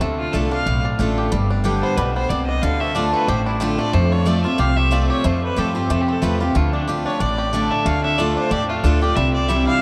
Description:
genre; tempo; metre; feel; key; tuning
bluegrass; 184 BPM; 4/4; swing 55% on 8ths; D dorian; A4 = 440 Hz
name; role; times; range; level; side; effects
bluegrass banjo; melody; 0.0-9.8 s; D3 to G4; -29 LUFS; equal; analog delay
picked steel-string acoustic guitar; accompaniment; 0.0-9.8 s; F2 to G4; -24 LUFS; equal; none
upright bass; bass; 0.0-9.7 s; G1 to G2; -24 LUFS; equal; none
rich fiddle; melody; 0.2-9.8 s; D4 to F5; -26 LUFS; equal; none
room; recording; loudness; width
wet cathedral reverb, RT60 7.2 s; in a vast, echoing space; -19 LUFS; mono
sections
0.0-1.3 A section; 1.3-9.8 B section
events
none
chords
0.0 Dm; 1.3 G; 2.6 Dm; 3.9 F; 6.6 Dm; 9.2 C

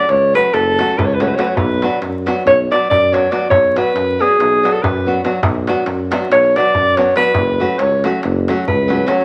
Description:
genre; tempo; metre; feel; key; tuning
balkan folk, Balkan wedding band; 281 BPM (eighths); 9/8; straight; B minor; A4 = 439 Hz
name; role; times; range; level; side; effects
breathy alto saxophone; melody; 0.0-9.2 s; G#4 to D5; -16 LUFS; equal; none
flamenco guitar; accompaniment; 0.0-9.2 s; F#3 to F#4; -23 LUFS; equal; none
mellow tuba; bass; 0.1-9.0 s; F#1 to F#2; -23 LUFS; equal; none
darbuka; percussion; 0.1-9.2 s; none; -25 LUFS; equal; none
room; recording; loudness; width
wet studio reverb, RT60 0.9 s; vinyl crackle; -15 LUFS; mono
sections
0.0-9.2 A section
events
alto saxophone solo 0.0-9.2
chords
0.0 F#m; 1.6 Bm; 7.3 F#m

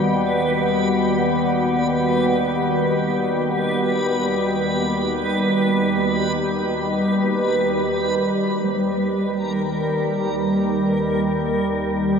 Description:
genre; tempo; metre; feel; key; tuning
dark ambient drone; free time; none; none; unclear; A4 = 439 Hz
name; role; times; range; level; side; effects
dark analog pad; sustained chords; 0.0-12.2 s; Bb3 to G5; -26 LUFS; equal; chorus
organ-like drone; drone; 0.0-12.2 s; Eb2 to G3; -21 LUFS; equal; ensemble chorus, built-in reverb
backwards swelling texture; texture; 0.0-12.2 s; Bb4 to B4; -24 LUFS; equal; built-in reverb
gamelan-type bronze metallophone; arpeggios; 8.6-12.2 s; G3; -26 LUFS; right 1 dB; ping-pong delay
room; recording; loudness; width
wet huge ambient reverb, RT60 9.0 s; dreamy mix soaked in reverb; -18 LUFS; side -6 dB against mid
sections
0.0-8.6 A section; 8.6-12.2 B section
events
fade-out on analog synth pad 0.0-8.6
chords
0.0 B; 8.6 Eb

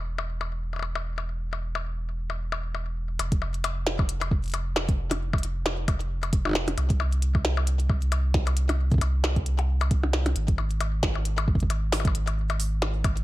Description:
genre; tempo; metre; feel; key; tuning
IDM; 134 BPM; 4/4; swing 56% on 16ths; unclear; A4 = 441 Hz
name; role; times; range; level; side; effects
warm sub bass; bass; 0.0-13.2 s; E1 to C2; -27 LUFS; equal; none
glitchy drum kit; drums; 0.2-13.2 s; hi-hat, percussion blips, snare drum; -30 LUFS; left 2 dB; small room ambience
electronic kick drum; drums; 3.3-13.1 s; none; -25 LUFS; equal; small room ambience
room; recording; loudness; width
digital ambience; none; -24 LUFS; side -17 dB against mid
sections
0.0-3.2 A section; 3.2-13.2 B section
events
none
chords
none

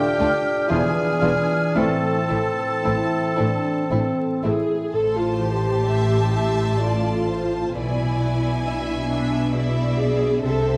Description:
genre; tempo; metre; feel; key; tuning
classical, slow romantic movement for symphony orchestra; 54-68 BPM; 3/4; rubato; A minor; A4 = 440 Hz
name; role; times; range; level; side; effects
warm studio violin section; melody; 0.0-10.8 s; G5 to C6; -38 LUFS; equal; none
clear oboe; second line; 0.0-4.4 s; G4 to A4; -34 LUFS; equal; none
dark clarinet; second line; 0.0-4.4 s; G4 to A4; -32 LUFS; equal; none
large flute ensemble; second line; 0.0-4.6 s; E6 to F6; -33 LUFS; equal; none
warm bassoon; accompaniment; 0.0-4.6 s; C4 to D4; -27 LUFS; equal; none
clear trombone section; sustained chords; 0.0-2.2 s; E3 to B3; -34 LUFS; equal; none
mellow French horn section; sustained chords; 0.0-4.9 s; C4 to E4; -30 LUFS; equal; none
concert harp; arpeggios; 0.0-10.8 s; A2 to D5; -30 LUFS; equal; none
rich studio violin section; second line; 0.2-10.8 s; C4 to A5; -32 LUFS; equal; none
rich studio viola section; accompaniment; 0.2-10.8 s; E3 to A4; -28 LUFS; equal; none
clear studio double bass section; bass; 0.2-10.8 s; E1 to D2; -30 LUFS; equal; none
rich studio cello section; bass; 0.2-10.8 s; D2 to C3; -29 LUFS; equal; none
room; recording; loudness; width
wet scoring stage reverb, RT60 1.5 s; vinyl crackle; -22 LUFS; mono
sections
0.0-4.9 A section; 4.9-10.8 A section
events
none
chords
0.0 Dm; 0.7 E7b9; 1.8 Am; 7.7 E7/B

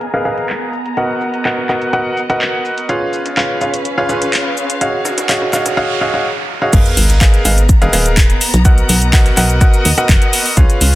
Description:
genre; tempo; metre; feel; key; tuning
piano house; 125 BPM; 4/4; straight; G# dorian; A4 = 442 Hz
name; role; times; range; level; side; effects
breakbeat sampler-style drum kit; drums; 0.0-10.9 s; hi-hat, shaker, snare drum; -27 LUFS; right 1 dB; none
house drum kit; drums; 0.0-10.9 s; crash cymbal, handclaps, hi-hat, shaker; -18 LUFS; equal; overdrive
rich studio string section; texture; 0.0-11.0 s; B3 to A#5; -23 LUFS; equal; sidechain pumping
clear grand piano; riff; 0.1-11.0 s; E#4 to F#5; -17 LUFS; equal; sidechain pumping, tape echo
noise sweep and sub drop; sound effects; 5.5-8.7 s; none; -23 LUFS; right 1 dB; none
plucky analog bass; bass; 6.7-11.0 s; D#1 to D#2; -14 LUFS; equal; sidechain pumping
electronic kick drum; drums; 6.7-10.7 s; none; -10 LUFS; equal; none
room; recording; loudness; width
light reverb; dense, heavily limited modern master, low-pass filter; -11 LUFS; side -16 dB against mid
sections
0.0-6.7 A section; 6.7-11.0 B section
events
filter sweep 0.0-6.7; noise sweep 5.5-6.7; drop 6.7-11.0; impact 6.7-8.7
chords
0.0 G#m69; 0.7 Bmaj7; 2.9 C#7; 4.8 D#m11; 6.7 G#m69; 8.4 Bmaj7

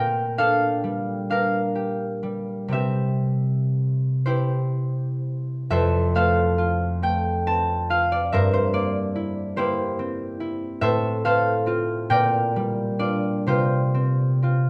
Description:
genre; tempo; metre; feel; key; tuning
classical, solo harp piece; 39-48 BPM (dotted quarters); 6/8; rubato; F major; A4 = 440 Hz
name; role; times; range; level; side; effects
concert harp; solo; 0.0-14.7 s; F2 to A5; -23 LUFS; equal; none
room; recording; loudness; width
moderate stone room reverb, RT60 1.0 s; close, detailed microphones; -23 LUFS; mono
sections
0.0-5.7 A section; 5.7-14.7 B section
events
none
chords
0.0 Gm/Bb; 2.7 C; 5.7 F; 8.3 C7/G; 10.8 F/A; 12.1 Gm7/Bb; 13.5 Csus4

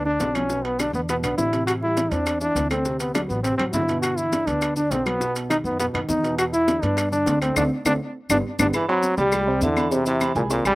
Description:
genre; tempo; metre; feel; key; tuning
latin, salsa; 204 BPM; 4/4; straight; G major; A4 = 440 Hz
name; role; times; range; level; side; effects
bright trombone; melody; 0.0-10.8 s; Bb2 to F#4; -22 LUFS; equal; slapback echo
upright bass; bass; 0.0-10.8 s; G1 to G2; -28 LUFS; equal; none
dark upright piano; accompaniment; 0.1-10.8 s; B2 to C6; -28 LUFS; right 1 dB; none
bongos and cowbell; percussion; 0.1-10.7 s; none; -35 LUFS; left 4 dB; none
congas; percussion; 0.1-10.8 s; none; -31 LUFS; left 2 dB; none
maracas; percussion; 0.2-10.8 s; none; -34 LUFS; left 3 dB; none
timbales and agogo bells; percussion; 0.2-10.8 s; none; -33 LUFS; right 5 dB; slapback echo
claves; percussion; 0.3-10.8 s; none; -30 LUFS; left 3 dB; none
room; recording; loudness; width
little or no reverb; recorded outdoors, with no room sound; -20 LUFS; side -19 dB against mid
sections
0.0-8.7 A section; 8.7-10.8 B section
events
band accent 7.6-8.7; drum fill 7.9-8.7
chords
0.5 Bmadd9; 1.1 E5; 1.7 Am7; 2.9 D7; 4.0 G6; 5.2 B; 6.4 Em7; 7.6 D5; 8.2 G; 8.7 Cadd9; 9.9 Eaug

